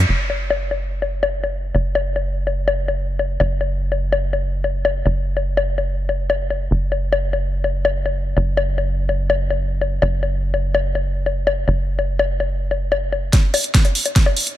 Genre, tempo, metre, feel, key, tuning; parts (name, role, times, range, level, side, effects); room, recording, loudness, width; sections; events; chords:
psychedelic trance; 145 BPM; 4/4; straight; A4 = 439 Hz
tight sequencer bass; bass; 0.0-13.3 s; F#1; -21 LUFS; equal
drum and bass drum kit; drums; 0.3-14.6 s; bongos, hi-hat, snare drum; -21 LUFS; left 4 dB; overdrive, high-pass filter on hats, low-pass filter on hats, high-pass filter on perc, low-pass filter on perc, high-pass filter on snare, low-pass filter on snare, high-pass filter on room, low-pass filter on room
electronic kick drum; drums; 13.3-14.2 s; -13 LUFS; equal; overdrive
little or no reverb; -18 LUFS; side -13 dB against mid
0.1-13.3 A section; 13.3-14.6 B section
build-up 13.3-14.6; drum fill 13.3-14.6